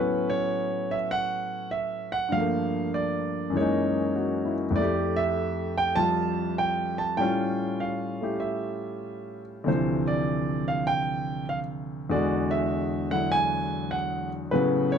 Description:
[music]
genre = solo jazz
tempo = 99 BPM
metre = 4/4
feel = swing 67% on 8ths, rubato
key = unclear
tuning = A4 = 440 Hz
[part]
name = clear grand piano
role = solo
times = 0.0-15.0 s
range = D2 to A5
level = -24 LUFS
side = equal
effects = none
[sound]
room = light reverb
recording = dark, warm production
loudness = -24 LUFS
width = side -7 dB against mid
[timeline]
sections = 0.0-15.0 A section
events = none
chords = 0.0 A69; 2.3 Gm9; 3.6 F#13; 4.8 Fmaj9; 7.2 A7b13; 9.7 Dm9; 12.1 E9

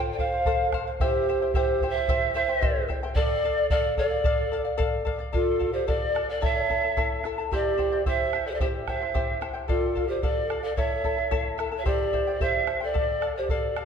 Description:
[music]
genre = andean folk, Andean ensemble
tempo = 110 BPM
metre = 2/4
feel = straight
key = D minor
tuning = A4 = 445 Hz
[part]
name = charango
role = accompaniment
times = 0.0-13.8 s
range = E4 to A5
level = -31 LUFS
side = left 6 dB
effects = none
[part]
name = mellow pan flute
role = melody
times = 0.1-13.8 s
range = A4 to G5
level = -27 LUFS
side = equal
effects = none
[part]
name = breathy bright large pan pipes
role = second line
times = 0.1-13.8 s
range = F4 to D5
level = -30 LUFS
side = right 4 dB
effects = none
[part]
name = bombo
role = percussion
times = 0.2-13.8 s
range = none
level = -29 LUFS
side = equal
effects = none
[sound]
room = wet recital hall reverb, RT60 1.5 s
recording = dark, warm production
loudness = -23 LUFS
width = side -7 dB against mid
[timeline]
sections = 0.0-5.3 A section; 5.3-13.8 B section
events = none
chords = 0.0 F; 1.0 C; 3.2 Dm; 6.4 A; 7.5 C; 9.7 Dm; 10.8 A; 11.9 C; 12.9 Dm

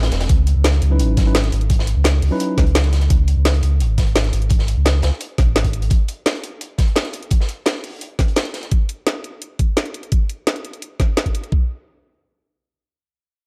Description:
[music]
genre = liquid drum and bass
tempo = 171 BPM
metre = 4/4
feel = straight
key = unclear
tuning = A4 = 442 Hz
[part]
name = sub bass with octave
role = bass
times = 0.0-5.9 s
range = E1 to C#2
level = -19 LUFS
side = equal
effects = none
[part]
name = crunchy breakbeat drum kit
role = drums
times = 0.0-8.7 s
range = hi-hat, snare drum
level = -31 LUFS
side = equal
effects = high-pass filter on hats, high-pass filter on snare, high-pass filter on room
[part]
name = drum and bass drum kit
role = drums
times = 0.0-11.5 s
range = hi-hat, snare drum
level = -24 LUFS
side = equal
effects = overdrive
[part]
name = electronic kick drum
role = drums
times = 0.3-11.6 s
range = none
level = -19 LUFS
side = equal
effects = overdrive
[part]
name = mellow tine electric piano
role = accompaniment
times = 0.9-2.6 s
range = F#3 to B4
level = -27 LUFS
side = equal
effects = digital delay
[sound]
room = light reverb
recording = dark, warm production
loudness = -18 LUFS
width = mono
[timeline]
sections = 0.3-11.5 A section; 11.5-13.5 B section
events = none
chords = 0.3 C#m11; 5.9 N.C.

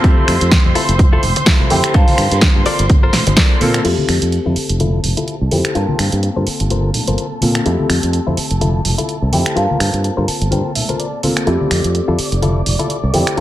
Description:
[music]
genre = filtered disco house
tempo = 126 BPM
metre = 4/4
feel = swing 56% on 16ths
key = F major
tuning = A4 = 440 Hz
[part]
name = clear grand piano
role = accompaniment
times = 0.0-13.4 s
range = A3 to A5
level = -21 LUFS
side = equal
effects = phaser, vintage 12-bit sampler grit, sidechain pumping, low-pass filter
[part]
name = warm studio string section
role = sustained chords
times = 0.0-13.4 s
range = A4 to D6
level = -26 LUFS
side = right 1 dB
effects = sidechain pumping, low-pass filter
[part]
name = direct-recorded clean electric guitar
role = riff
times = 0.0-13.4 s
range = E4 to A5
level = -24 LUFS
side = left 5 dB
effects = sidechain pumping, low-pass filter
[part]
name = modern bright fingered electric bass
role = bass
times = 0.0-13.4 s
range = F1 to Bb2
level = -17 LUFS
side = equal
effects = sidechain pumping, low-pass filter
[part]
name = electronic kick drum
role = drums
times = 0.0-3.5 s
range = none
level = -12 LUFS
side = equal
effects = overdrive
[part]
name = punchy analog drum machine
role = drums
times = 0.0-13.4 s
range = crash cymbal, finger snaps, hi-hat, snare drum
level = -19 LUFS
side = right 1 dB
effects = sidechain pumping on hats, sidechain pumping on cymbals
[part]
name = tambourine and congas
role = percussion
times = 0.0-13.4 s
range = none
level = -24 LUFS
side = left 1 dB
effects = sidechain pumping on perc, low-pass filter on perc
[sound]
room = light reverb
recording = none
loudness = -13 LUFS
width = side -14 dB against mid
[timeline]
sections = 0.0-3.9 A section; 3.9-13.4 B section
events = clean electric guitar fill 10.0-11.5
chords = 0.0 Fmaj7; 1.9 Gm11; 3.9 Fmaj7; 5.8 Gm11; 7.7 Fmaj7; 9.6 Gm11; 11.5 Fmaj7

